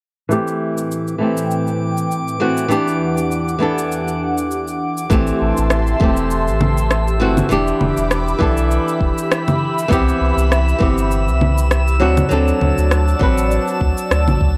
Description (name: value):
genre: sunset chillout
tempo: 100 BPM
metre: 4/4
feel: swing 55% on 16ths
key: A dorian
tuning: A4 = 440 Hz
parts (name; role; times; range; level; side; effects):
- flamenco guitar; accompaniment; 0.3-14.6 s; E3 to B4; -22 LUFS; equal; low-pass filter, tape echo
- airy breathy pad; sustained chords; 0.3-14.6 s; E2 to D6; -26 LUFS; equal; chorus, phaser
- electronic shaker, rim click and congas; drums; 0.3-14.4 s; none; -24 LUFS; equal; none
- drifting glass-harmonics texture; texture; 0.9-14.6 s; D6 to E6; -31 LUFS; equal; chorus, built-in reverb
- warm sub bass; bass; 5.1-14.6 s; E1 to D2; -20 LUFS; equal; none
- electronic kick drum; drums; 5.1-14.5 s; none; -20 LUFS; equal; none
room: little or no reverb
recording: dry, gritty hardware recording, cassette tape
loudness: -17 LUFS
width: mono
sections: 0.3-5.1 A section; 5.1-14.6 B section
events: filter sweep on nylon-string guitar 0.3-5.1; filter sweep on analog synth pad 0.3-5.1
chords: 0.3 Am7; 2.7 Em7; 5.1 Am7; 7.5 Em7; 9.9 Cmaj7; 12.0 D7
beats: | 0.31 0.91 1.51 2.11 | 2.71 3.31 3.91 4.51 | 5.11 5.71 6.31 6.91 | 7.51 8.11 8.71 9.31 | 9.91 10.51 11.11 11.71 | 12.31 12.91 13.51 14.11